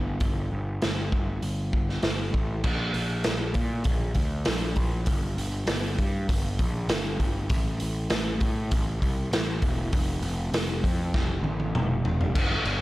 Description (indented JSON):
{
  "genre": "quiet-loud alternative rock",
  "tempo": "99 BPM",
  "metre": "4/4",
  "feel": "straight",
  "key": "unclear",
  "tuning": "A4 = 439 Hz",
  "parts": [
    { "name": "fuzz picked electric bass", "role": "bass", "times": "0.0-12.8 s", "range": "E1 to Bb2", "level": "-28 LUFS", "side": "equal", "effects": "overdrive" },
    { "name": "raw garage drum kit", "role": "drums", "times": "0.2-12.8 s", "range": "crash cymbal, hi-hat, kick drum, snare drum, toms", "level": "-26 LUFS", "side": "equal", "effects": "none" }
  ],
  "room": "little or no reverb",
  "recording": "none",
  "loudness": "-24 LUFS",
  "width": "side -17 dB against mid",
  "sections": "0.0-2.6 A section; 2.6-12.4 B section",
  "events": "drum fill 11.1-12.4",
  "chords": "none",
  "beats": "| 0.21 0.82 1.43 2.04 | 2.65 3.26 3.87 4.47 | 5.08 5.69 6.29 6.90 | 7.51 8.11 8.72 9.33 | 9.93 10.54 11.14 11.75 | 12.35"
}